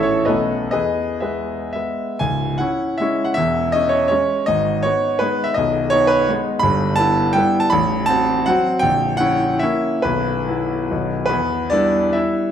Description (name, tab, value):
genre	classical, romantic triple-time dance for piano with dotted rhythms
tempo	112-177 BPM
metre	3/4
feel	rubato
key	C# minor, E minor from 6.6 s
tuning	A4 = 440 Hz
part	clear grand piano	solo	0.0-12.5 s	A0 to B5	-16 LUFS	equal	none
room	wet recital hall reverb, RT60 1.9 s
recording	none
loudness	-16 LUFS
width	side -9 dB against mid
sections	0.0-2.2 A section; 2.2-11.3 B section; 11.3-12.5 C section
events	none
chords	0.3 B9; 0.7 E; 2.2 C#m; 3.3 C#m/E; 4.5 G#m; 5.6 G#m/B; 6.6 Em/G; 7.7 F#dim/A; 8.8 A#dim7; 10.0 E5/B; 10.9 B; 11.3 Em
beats	0.28 | 0.73 1.23 1.74 | 2.19 2.59 2.99 | 3.35 3.72 4.11 | 4.46 4.84 5.21 | 5.56 5.92 6.28 | 6.63 6.99 7.37 | 7.72 8.08 8.46 | 8.82 9.20 9.61 | 10.03 10.46 10.90 | 11.31 11.73 12.15